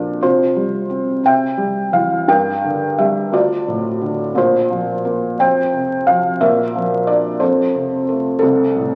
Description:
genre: classical, lyrical solo piano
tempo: 58 BPM (dotted quarters)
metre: 6/8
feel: rubato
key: F major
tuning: A4 = 445 Hz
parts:
  - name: felt-muted upright piano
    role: solo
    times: 0.0-8.9 s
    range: C2 to G5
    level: -17 LUFS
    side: equal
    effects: none
room: wet recital hall reverb, RT60 1.6 s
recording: very old 78 rpm record, vinyl crackle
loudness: -17 LUFS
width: mono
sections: 0.0-8.9 A section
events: none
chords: 0.2 Csus4; 1.2 C; 2.3 Gm; 3.3 Dm; 4.4 Bbsus2; 5.4 F5; 6.4 Bb; 7.4 F; 8.4 Am/C

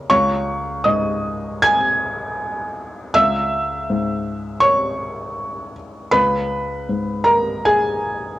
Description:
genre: neoclassical minimalist piano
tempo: 80 BPM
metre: 4/4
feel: rubato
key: C# dorian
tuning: A4 = 441 Hz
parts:
  - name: felt-muted upright piano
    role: solo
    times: 0.0-8.4 s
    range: C#2 to G#6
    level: -17 LUFS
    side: equal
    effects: cassette tape
room: light reverb, studio ambience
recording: home recording on cassette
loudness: -17 LUFS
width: side -15 dB against mid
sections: 0.0-8.4 A section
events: none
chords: 0.1 C#sus2; 3.1 C#m; 6.1 B5/C#

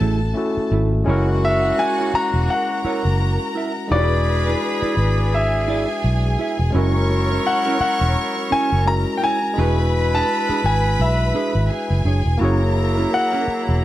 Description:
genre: soul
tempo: 85 BPM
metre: 4/4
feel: swing 58% on 16ths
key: unclear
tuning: A4 = 438 Hz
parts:
  - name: warm concert grand piano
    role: melody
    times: 0.0-13.8 s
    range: D5 to A#5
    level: -22 LUFS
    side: left 1 dB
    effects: none
  - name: warm studio violin section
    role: second line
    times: 0.0-13.8 s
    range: F#4 to C#6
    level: -27 LUFS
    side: left 1 dB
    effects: none
  - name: barky tine electric piano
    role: accompaniment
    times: 0.0-13.8 s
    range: G#3 to C#5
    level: -24 LUFS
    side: left 2 dB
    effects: overdrive
  - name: mellow electric guitar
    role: riff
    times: 0.0-13.8 s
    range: A3 to E5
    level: -28 LUFS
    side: right 6 dB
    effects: none
  - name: vintage muted fingered electric bass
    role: bass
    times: 0.0-13.8 s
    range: E1 to B1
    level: -19 LUFS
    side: equal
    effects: none
  - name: clear horn section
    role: stabs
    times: 1.1-13.8 s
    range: C#3 to B4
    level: -28 LUFS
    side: right 2 dB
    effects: none
room: small room reverb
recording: none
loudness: -17 LUFS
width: side -14 dB against mid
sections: 0.0-1.1 A section; 1.1-13.8 B section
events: none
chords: 0.0 F#m9; 1.1 F#7; 3.9 E7; 6.7 F#7; 9.6 E7; 12.4 F#7

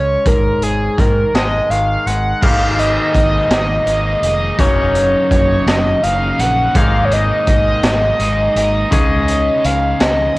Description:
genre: indie rock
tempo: 55 BPM (dotted quarters)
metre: 6/8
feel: straight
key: unclear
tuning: A4 = 440 Hz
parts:
  - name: overdriven synth lead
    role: melody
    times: 0.0-10.4 s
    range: Ab4 to Gb5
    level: -16 LUFS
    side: equal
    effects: distortion
  - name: twangy electric guitar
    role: riff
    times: 0.0-10.4 s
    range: Gb2 to Ab4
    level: -21 LUFS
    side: left 3 dB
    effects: cassette tape
  - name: growling fingered electric bass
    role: bass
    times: 0.0-10.4 s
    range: F1 to Ab2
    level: -20 LUFS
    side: equal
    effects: overdrive
  - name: raw garage drum kit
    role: drums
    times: 0.3-10.4 s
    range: crash cymbal, hi-hat, kick drum, snare drum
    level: -17 LUFS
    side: equal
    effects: cassette tape
  - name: cranked stack guitar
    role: riff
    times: 2.4-10.4 s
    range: Gb2 to Ab4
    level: -23 LUFS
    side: right 3 dB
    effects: overdrive, lush chorus, cassette tape
room: light reverb, studio ambience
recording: home recording on cassette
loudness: -12 LUFS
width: side -20 dB against mid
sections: 0.0-2.4 A section; 2.4-10.4 B section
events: none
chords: 0.3 Ab5; 2.4 Absus2; 4.6 Gb6; 6.8 Absus2; 8.9 Dbadd9

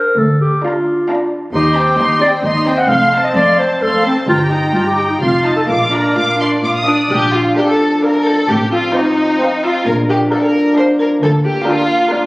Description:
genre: cinematic, playful, whimsical film cue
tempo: 131 BPM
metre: 3/4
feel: straight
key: Bb major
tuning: A4 = 440 Hz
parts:
  - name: muted studio violin section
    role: melody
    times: 0.0-12.3 s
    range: F5 to Eb6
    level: -21 LUFS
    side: equal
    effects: none
  - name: mellow clarinet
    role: second line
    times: 0.0-6.8 s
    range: C4 to Gb5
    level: -15 LUFS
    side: equal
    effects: none
  - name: muted chamber violin section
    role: second line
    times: 0.0-12.3 s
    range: D4 to Bb5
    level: -18 LUFS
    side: equal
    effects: none
  - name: muted studio viola section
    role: accompaniment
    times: 0.0-12.3 s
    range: A3 to C5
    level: -20 LUFS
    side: equal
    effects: none
  - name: muted studio cello section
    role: bass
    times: 0.2-11.6 s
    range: D2 to D3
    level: -21 LUFS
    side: equal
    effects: none
  - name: muted studio double bass section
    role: bass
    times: 0.2-11.6 s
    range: F1 to Eb2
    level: -21 LUFS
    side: equal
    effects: none
  - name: folk marimba with medium hard mallets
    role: melody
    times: 6.9-12.3 s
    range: D4 to C5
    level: -20 LUFS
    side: left 1 dB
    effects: none
  - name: mellow French horn section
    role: sustained chords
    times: 7.1-12.3 s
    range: F3 to D4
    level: -17 LUFS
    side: equal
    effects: none
room: wet scoring stage reverb, RT60 1.6 s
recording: recorded on a phone in the room, studio reverb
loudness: -11 LUFS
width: side -21 dB against mid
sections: 0.0-7.1 A section; 7.1-12.3 A section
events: none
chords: 0.2 Bb/D; 1.5 Cm/Eb; 2.9 F; 4.3 Eb/G; 5.2 F7; 5.7 Bb; 8.5 F7/A; 9.9 Bb; 11.2 Bb/D

